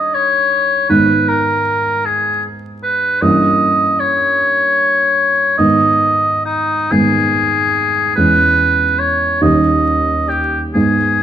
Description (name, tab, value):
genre	classical, romantic duo for oboe and grand piano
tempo	42-53 BPM (dotted quarters)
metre	6/8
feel	rubato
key	G# minor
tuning	A4 = 440 Hz
part	warm oboe	melody	0.0-11.2 s	D#4 to D#5	-13 LUFS	equal	none
part	dark grand piano	accompaniment	0.0-11.2 s	D#2 to D#4	-17 LUFS	right 2 dB	none
room	moderate scoring stage reverb, RT60 1.6 s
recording	close, detailed microphones, vinyl crackle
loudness	-12 LUFS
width	side -10 dB against mid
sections	0.0-11.2 A section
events	none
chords	0.0 D#7/G; 0.9 G#m; 3.2 Gdim7; 5.6 G#m; 8.2 C#m/E; 9.4 D#7